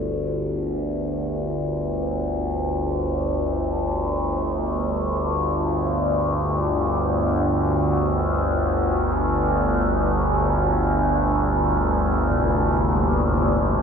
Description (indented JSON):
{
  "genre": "dark ambient drone",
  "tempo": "free time",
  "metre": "none",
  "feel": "none",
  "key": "unclear",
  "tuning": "A4 = 439 Hz",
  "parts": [
    { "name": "overtone-sweeping drone", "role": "drone", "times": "0.0-13.8 s", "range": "G1 to D2", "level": "-20 LUFS", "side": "equal", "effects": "chorus, built-in reverb, phaser" },
    { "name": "carillon bells", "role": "arpeggios", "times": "12.3-13.8 s", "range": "A2 to G3", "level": "-26 LUFS", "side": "left 1 dB", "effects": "none" }
  ],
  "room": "wet huge ambient reverb, RT60 7.8 s",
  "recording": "dreamy mix soaked in reverb",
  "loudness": "-20 LUFS",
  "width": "side -6 dB against mid",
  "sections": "0.0-13.8 A section",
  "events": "none",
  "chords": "0.0 G5"
}